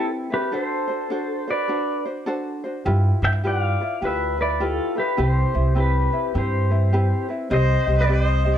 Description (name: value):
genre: Hawaiian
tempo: 103 BPM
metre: 4/4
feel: swing 63% on 8ths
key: C major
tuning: A4 = 440 Hz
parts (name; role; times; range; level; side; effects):
- pedal steel guitar; melody; 0.0-8.6 s; F4 to G5; -24 LUFS; left 1 dB; slapback echo
- ukulele; accompaniment; 0.0-8.6 s; C4 to Eb5; -27 LUFS; left 1 dB; none
- upright bass; bass; 2.9-8.6 s; C2 to G2; -20 LUFS; right 1 dB; none
- clear erhu; second line; 7.5-8.6 s; B4 to C5; -30 LUFS; right 4 dB; none
room: light reverb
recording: dark, warm production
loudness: -19 LUFS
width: side -10 dB against mid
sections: 0.0-7.5 A section; 7.5-8.6 B section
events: none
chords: 0.0 Cmaj7; 0.5 D7; 2.9 G6; 5.2 Cmaj7; 7.5 Cm